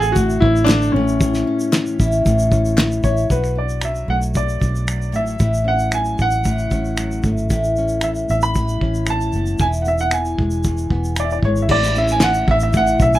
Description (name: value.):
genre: acoustic pop.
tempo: 114 BPM.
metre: 4/4.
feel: straight.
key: A major.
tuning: A4 = 440 Hz.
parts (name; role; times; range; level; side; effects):
clear upright piano; melody; 0.0-13.2 s; C#4 to B5; -20 LUFS; equal; none.
nylon-string guitar; accompaniment; 0.0-13.2 s; E2 to F#4; -21 LUFS; left 1 dB; none.
vintage muted fingered electric bass; bass; 0.0-13.2 s; E1 to B1; -21 LUFS; equal; none.
cloth-damped thuddy drum kit; drums; 0.0-13.2 s; crash cymbal, finger snaps, kick drum, shaker, snare drum; -20 LUFS; equal; none.
group handclap; percussion; 0.7-2.9, 12.2-12.3 s; none; -26 LUFS; left 4 dB; none.
room: light reverb.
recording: none.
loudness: -16 LUFS.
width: side -14 dB against mid.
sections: 0.0-3.3 A section; 3.3-11.7 B section; 11.7-13.2 A section.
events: none.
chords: 0.0 D7/A; 0.9 A; 3.3 Bm7; 5.1 F#m7/A; 7.5 Aadd9; 9.6 E; 11.7 A.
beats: 0.15 0.68 | 1.20 1.73 2.25 2.78 | 3.30 3.83 4.35 4.88 | 5.41 5.93 6.46 6.98 | 7.50 8.03 8.55 9.08 | 9.60 10.13 10.65 11.17 | 11.70 12.22 12.74.